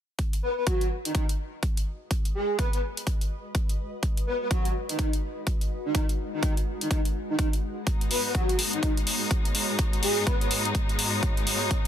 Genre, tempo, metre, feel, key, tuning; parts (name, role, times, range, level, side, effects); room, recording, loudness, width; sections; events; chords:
bass house; 125 BPM; 4/4; swing 61% on 16ths; G# minor; A4 = 436 Hz
electronic hi-hat; drums; 0.2-11.9 s; -30 LUFS; left 1 dB
electronic kick drum; drums; 0.2-11.8 s; -26 LUFS; equal; overdrive
granular cloud pad; texture; 1.9-11.9 s; G#3 to D#5; -36 LUFS; equal; built-in reverb, sidechain pumping
breathy flute-like synth lead; melody; 0.4-10.5 s; D#4 to B4; -30 LUFS; equal; ensemble chorus, ping-pong delay
rich symphonic string section; sustained chords; 7.9-11.9 s; G#2 to D#4; -31 LUFS; left 2 dB; sidechain pumping
digital ambience; dense, heavily limited modern master; -24 LUFS; side -10 dB against mid
0.2-11.9 A section
fade-in on ambient pad 0.2-11.9
0.2 G#m